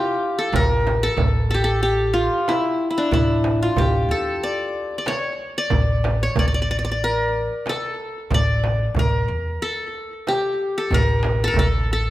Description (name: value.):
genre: Arabic maqam ensemble.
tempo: 92 BPM.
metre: 4/4.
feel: straight.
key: A maqam hijaz.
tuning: A4 = 440 Hz.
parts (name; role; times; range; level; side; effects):
qanun; melody; 0.0-12.1 s; D4 to D5; -21 LUFS; left 1 dB; tape echo.
upright bass; bass; 0.5-12.1 s; A1 to E2; -22 LUFS; right 1 dB; none.
darbuka; percussion; 0.5-11.7 s; none; -25 LUFS; equal; none.
frame drum; percussion; 0.5-11.7 s; none; -27 LUFS; right 4 dB; none.
room: moderate recital hall reverb, RT60 1.5 s.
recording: faint mains hum.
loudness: -18 LUFS.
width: side -15 dB against mid.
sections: 0.0-12.1 A section.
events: none.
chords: none.